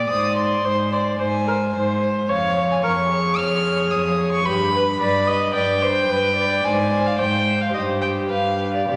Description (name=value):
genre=quick classical-period movement for string quartet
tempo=110 BPM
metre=4/4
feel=rubato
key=unclear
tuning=A4 = 441 Hz
part: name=rich violin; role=melody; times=0.0-9.0 s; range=D5 to F6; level=-25 LUFS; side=equal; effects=none
part: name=warm violin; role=second line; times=0.0-9.0 s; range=G4 to Db5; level=-30 LUFS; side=equal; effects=none
part: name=warm viola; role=accompaniment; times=0.0-9.0 s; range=G4 to Eb5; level=-25 LUFS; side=equal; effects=none
part: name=rich cello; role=bass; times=0.0-9.0 s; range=F2 to C3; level=-27 LUFS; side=equal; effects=none
room=wet scoring stage reverb, RT60 2.1 s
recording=none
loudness=-20 LUFS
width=mono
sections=0.0-9.0 A section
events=none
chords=0.1 Ab; 2.3 Db/F; 4.5 G; 6.6 Abmaj7#11; 7.7 C5/G